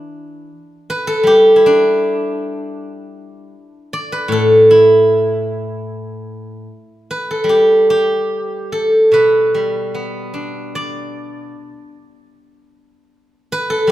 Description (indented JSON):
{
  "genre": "chinese traditional, Chinese solo plucked strings",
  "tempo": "76 BPM",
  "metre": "4/4",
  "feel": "rubato",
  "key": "G gong mode",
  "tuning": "A4 = 439 Hz",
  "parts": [
    { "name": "steel-string zither", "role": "solo", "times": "0.0-13.9 s", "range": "A2 to D5", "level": "-13 LUFS", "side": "equal", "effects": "none" }
  ],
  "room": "moderate concert hall reverb, RT60 1.8 s",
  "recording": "minimal, uncompressed stereo recording",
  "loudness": "-11 LUFS",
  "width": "side -14 dB against mid",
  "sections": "0.0-13.9 A section",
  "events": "none",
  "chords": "none",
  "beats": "0.48 1.25 2.00 | 2.76 3.53 4.30 5.09 | 5.87 6.66 7.47 8.29 | 9.12 9.93 10.73 11.53 | 12.32 13.10 13.88"
}